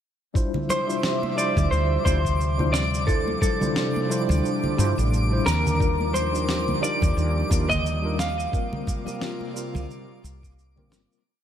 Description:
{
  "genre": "sunset chillout",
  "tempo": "88 BPM",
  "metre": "4/4",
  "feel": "swing 57% on 16ths",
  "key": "D minor",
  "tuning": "A4 = 442 Hz",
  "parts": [
    { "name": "mellow tine electric piano", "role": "accompaniment", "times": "0.3-11.2 s", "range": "G3 to C5", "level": "-30 LUFS", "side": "moving between left 6 dB and right 3 dB", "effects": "overdrive, medium stereo tremolo, auto-pan, analog delay, shimmer reverb" },
    { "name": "airy breathy pad", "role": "sustained chords", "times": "0.3-11.2 s", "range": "C3 to E5", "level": "-31 LUFS", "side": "left 1 dB", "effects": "chorus, shimmer reverb" },
    { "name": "electronic cabasa, congas and snare drum", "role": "drums", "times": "0.4-11.2 s", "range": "none", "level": "-30 LUFS", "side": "right 1 dB", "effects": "none" },
    { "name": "electronic kick drum", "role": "drums", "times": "0.4-10.6 s", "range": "none", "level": "-24 LUFS", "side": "equal", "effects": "none" },
    { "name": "twinkling granular texture", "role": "texture", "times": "0.8-11.3 s", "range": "D6", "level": "-36 LUFS", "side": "left 1 dB", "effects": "built-in reverb, shimmer reverb" },
    { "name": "congas", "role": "percussion", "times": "0.5-9.9 s", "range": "none", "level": "-36 LUFS", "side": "right 3 dB", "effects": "none" },
    { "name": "clean electric guitar", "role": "melody", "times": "0.7-10.5 s", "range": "A4 to F5", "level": "-27 LUFS", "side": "equal", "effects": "lush chorus, tape echo, shimmer reverb" },
    { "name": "woody fretless electric bass", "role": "bass", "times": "1.6-11.1 s", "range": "G1 to G2", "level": "-24 LUFS", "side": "equal", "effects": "wide subtle chorus" }
  ],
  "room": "moderate echo chamber reverb, RT60 2.2 s",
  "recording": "echo-heavy mix",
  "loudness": "-21 LUFS",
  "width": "side -9 dB against mid",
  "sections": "0.4-11.3 groove",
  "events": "fade-out 7.6-11.3",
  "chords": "0.4 Dm11; 5.8 Ebmaj9; 8.5 C7sus4",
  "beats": "| 0.35 1.03 1.72 2.40 | 3.08 3.76 4.44 5.13 | 5.81 6.49 7.17 7.85 | 8.54 9.22 9.90 10.58"
}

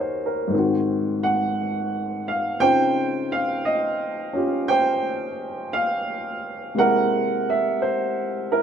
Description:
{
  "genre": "solo jazz",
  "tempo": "58 BPM",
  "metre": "4/4",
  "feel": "swing 67% on 8ths",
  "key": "unclear",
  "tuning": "A4 = 440 Hz",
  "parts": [
    { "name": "warm upright piano", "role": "solo", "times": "0.0-8.6 s", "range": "Eb2 to G5", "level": "-20 LUFS", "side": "right 1 dB", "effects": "none" }
  ],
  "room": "light reverb",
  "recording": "lossy compression artefacts",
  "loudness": "-20 LUFS",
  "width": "side -8 dB against mid",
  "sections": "0.0-8.6 A section",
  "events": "none",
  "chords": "0.0 Ebm7; 0.5 Ab7; 2.6 Dbmaj9; 6.8 Caug7",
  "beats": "0.53 1.57 | 2.61 3.65 4.69 5.73 | 6.77 7.81"
}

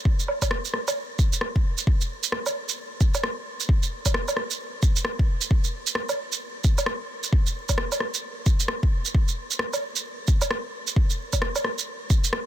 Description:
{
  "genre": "future garage",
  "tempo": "132 BPM",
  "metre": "4/4",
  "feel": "swing 62% on 16ths",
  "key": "none",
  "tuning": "none",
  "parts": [
    { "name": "electronic kick drum", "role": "drums", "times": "0.1-12.2 s", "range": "none", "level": "-21 LUFS", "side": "equal", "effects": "none" },
    { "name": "electronic shaker, woodblock and rim click", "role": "drums", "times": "0.2-12.4 s", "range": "none", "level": "-27 LUFS", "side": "right 2 dB", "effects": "soft clipping on snare" }
  ],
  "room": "little or no reverb",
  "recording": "dense, heavily limited modern master",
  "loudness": "-22 LUFS",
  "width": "side -12 dB against mid",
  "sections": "0.0-1.9 A section; 1.9-12.5 B section",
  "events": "none",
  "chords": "none",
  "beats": "| 0.05 0.51 0.96 1.42 | 1.87 2.33 2.78 3.23 | 3.69 4.14 4.60 5.05 | 5.51 5.96 6.42 6.87 | 7.33 7.78 8.23 8.69 | 9.14 9.60 10.05 10.51 | 10.96 11.42 11.87 12.32"
}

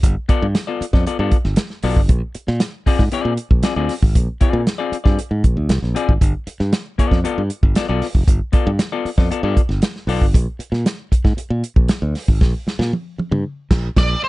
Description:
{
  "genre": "funk",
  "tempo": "116 BPM",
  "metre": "4/4",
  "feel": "straight",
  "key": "G mixolydian",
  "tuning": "A4 = 445 Hz",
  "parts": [
    { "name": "modern bright fingered electric bass", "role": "bass", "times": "0.0-14.1 s", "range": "F1 to Bb2", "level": "-19 LUFS", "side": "equal", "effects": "none" },
    { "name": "warm soul drum kit", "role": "drums", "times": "0.0-14.1 s", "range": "crash cymbal, hi-hat, kick drum, snare drum, toms", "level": "-16 LUFS", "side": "equal", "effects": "none" },
    { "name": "semi-hollow electric guitar", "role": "accompaniment", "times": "0.3-10.3 s", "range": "B3 to D5", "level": "-22 LUFS", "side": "left 6 dB", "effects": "none" },
    { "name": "octave-fuzz lead guitar", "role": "melody", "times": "14.0-14.3 s", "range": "C5 to D5", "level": "-19 LUFS", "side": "right 1 dB", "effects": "distortion" }
  ],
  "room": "little or no reverb",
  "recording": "dark, warm production, nothing above 10.8 kHz",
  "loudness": "-16 LUFS",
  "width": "side -19 dB against mid",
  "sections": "0.0-14.3 A section",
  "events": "drum fill 12.4-14.3; band accent 13.4-14.3",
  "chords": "0.0 G9; 2.1 Bb9; 6.2 G9; 10.3 N.C.",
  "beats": "| 0.03 0.55 1.06 1.58 | 2.09 2.61 3.12 3.64 | 4.15 4.67 5.18 5.70 | 6.21 6.73 7.25 7.76 | 8.28 8.79 9.31 9.83 | 10.34 10.86 11.38 11.89 | 12.41 12.93 13.45 13.96"
}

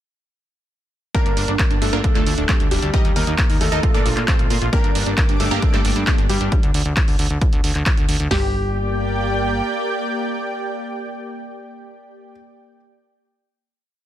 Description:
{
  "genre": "uplifting trance",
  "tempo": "134 BPM",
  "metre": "4/4",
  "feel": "straight",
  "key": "G minor",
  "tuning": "A4 = 440 Hz",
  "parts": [
    { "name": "wide unison pluck", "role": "melody", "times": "1.1-12.3 s", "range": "G3 to Eb5", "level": "-24 LUFS", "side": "right 2 dB", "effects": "phaser, cassette tape, sidechain pumping, dub echo" },
    { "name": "warm grand piano", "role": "second line", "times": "1.1-12.3 s", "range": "G3 to Bb4", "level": "-27 LUFS", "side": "left 2 dB", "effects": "digital delay" },
    { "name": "punchy analog drum machine", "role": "drums", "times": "1.1-8.4 s", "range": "hi-hat, kick drum, snare drum, toms", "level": "-18 LUFS", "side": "equal", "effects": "studio reverb" },
    { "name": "punchy analog drum machine", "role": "drums", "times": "1.1-8.3 s", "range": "handclaps, hi-hat", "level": "-25 LUFS", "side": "right 1 dB", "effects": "sidechain pumping on hats, studio reverb" },
    { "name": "plucky analog bass", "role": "bass", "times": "1.3-9.6 s", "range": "D1 to Bb2", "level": "-23 LUFS", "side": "equal", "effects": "sidechain pumping" },
    { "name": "lush unison pad", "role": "sustained chords", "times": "5.0-12.3 s", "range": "Bb3 to D6", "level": "-25 LUFS", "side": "equal", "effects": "chorus, sidechain pumping" }
  ],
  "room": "digital ambience",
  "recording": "dense, heavily limited modern master",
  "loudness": "-16 LUFS",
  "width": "side -12 dB against mid",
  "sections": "1.1-8.3 drop; 8.3-11.9 final chord",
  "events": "drop 1.1-8.3",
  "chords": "1.1 Gm; 2.0 D5; 2.9 Eb; 3.8 Bbmaj7(no3); 4.7 Gm; 6.5 N.C.; 8.3 Gm",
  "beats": "| 1.15 1.59 2.04 2.49 | 2.94 3.38 3.83 4.28 | 4.73 5.18 5.62 6.07 | 6.52 6.97 7.42 7.86 | 8.31 8.76 9.21 9.65 | 10.10 10.55 11.00 11.44"
}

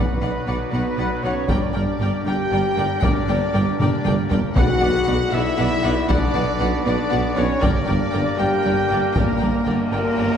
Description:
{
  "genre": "cinematic, epic orchestral film score",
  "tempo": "78 BPM (dotted quarters)",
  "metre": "6/8",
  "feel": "straight",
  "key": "unclear",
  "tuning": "A4 = 438 Hz",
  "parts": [
    { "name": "warm symphonic violin section", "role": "melody", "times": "0.0-10.4 s", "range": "Bb4 to G5", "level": "-31 LUFS", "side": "left 4 dB", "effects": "none" },
    { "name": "warm symphonic violin section", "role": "second line", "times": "0.0-9.9 s", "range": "Bb4 to G5", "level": "-31 LUFS", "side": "left 2 dB", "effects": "none" },
    { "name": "rich symphonic viola section", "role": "accompaniment", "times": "0.0-10.3 s", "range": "Bb4 to D5", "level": "-32 LUFS", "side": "right 1 dB", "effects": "none" },
    { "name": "brilliant trombone section", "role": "sustained chords", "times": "0.0-10.4 s", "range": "Bb2 to B3", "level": "-32 LUFS", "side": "right 1 dB", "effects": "none" },
    { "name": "mellow French horn section", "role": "sustained chords", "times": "0.0-10.4 s", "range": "Bb3 to G4", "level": "-24 LUFS", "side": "left 3 dB", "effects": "none" },
    { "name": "warm woodwind section", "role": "sustained chords", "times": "0.0-10.4 s", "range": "B3 to D5", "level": "-32 LUFS", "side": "equal", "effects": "none" },
    { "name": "clear trumpet", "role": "stabs", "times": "0.0-9.9 s", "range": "Bb4 to G5", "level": "-28 LUFS", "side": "right 1 dB", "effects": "none" },
    { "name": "mellow tuba", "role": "bass", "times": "0.0-10.3 s", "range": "G1 to B1", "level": "-27 LUFS", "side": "right 2 dB", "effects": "none" },
    { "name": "rich symphonic cello section", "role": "bass", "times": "0.0-10.3 s", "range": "G2 to B2", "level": "-27 LUFS", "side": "right 1 dB", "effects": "none" },
    { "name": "rich symphonic double bass section", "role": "bass", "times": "0.0-10.3 s", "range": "G1 to B1", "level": "-28 LUFS", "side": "right 2 dB", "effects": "none" },
    { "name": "taiko ensemble", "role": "drums", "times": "1.5-9.6 s", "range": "none", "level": "-23 LUFS", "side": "equal", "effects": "none" },
    { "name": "timpani", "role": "percussion", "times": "4.6-5.3 s", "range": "B2", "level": "-28 LUFS", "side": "left 1 dB", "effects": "none" },
    { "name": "reverse cymbal", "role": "sound effects", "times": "10.3-10.4 s", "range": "none", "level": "barely audible", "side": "none", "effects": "none" },
    { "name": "bright small flute group", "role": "second line", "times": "9.9-10.4 s", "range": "Bb4", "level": "-29 LUFS", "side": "equal", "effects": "none" }
  ],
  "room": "wet scoring stage reverb, RT60 1.7 s",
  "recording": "heard from further back in the room",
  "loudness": "-18 LUFS",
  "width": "side -8 dB against mid",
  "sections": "0.0-10.4 A section",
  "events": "drum fill 3.8-4.6",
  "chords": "0.0 Bm; 1.5 Gm; 4.6 Bm; 7.6 Gm",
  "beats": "0.73 | 1.50 2.26 | 3.03 3.80 | 4.57 5.33 | 6.10 6.86 | 7.63 8.39 | 9.16 9.92"
}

